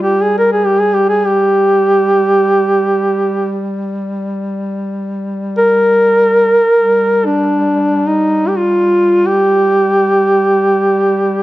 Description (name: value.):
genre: caucasian folk, Caucasian lament.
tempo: free time.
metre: none.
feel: none.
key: G phrygian.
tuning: A4 = 441 Hz.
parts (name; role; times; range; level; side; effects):
mellow duduk; melody; 0.0-11.4 s; D4 to Bb4; -10 LUFS; equal; none.
mellow duduk; drone; 0.0-11.4 s; G3; -20 LUFS; left 1 dB; none.
room: moderate recital hall reverb, RT60 1.7 s.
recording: close, detailed microphones.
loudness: -10 LUFS.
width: side -16 dB against mid.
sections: 0.0-11.4 A section.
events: none.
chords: none.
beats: free time.